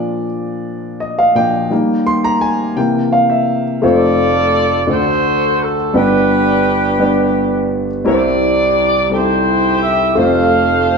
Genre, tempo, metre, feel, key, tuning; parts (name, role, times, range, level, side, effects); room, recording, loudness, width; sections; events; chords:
slow gospel; 57 BPM (dotted quarters); 6/8; straight; F major from 3.8 s; A4 = 440 Hz
warm concert grand piano; accompaniment; 0.0-11.0 s; F1 to C6; -14 LUFS; equal
warm horn section; melody; 3.8-11.0 s; D4 to F5; -15 LUFS; right 1 dB
wet large studio reverb, RT60 1.1 s; band playing live in one room, nothing above 10.7 kHz; -12 LUFS; side -5 dB against mid
0.0-3.8 A section; 3.8-11.0 B section
grand piano solo 0.0-3.8
0.0 Bb; 1.7 Eb; 2.8 C7; 3.8 F; 4.9 D7; 5.9 G; 8.1 C; 10.2 F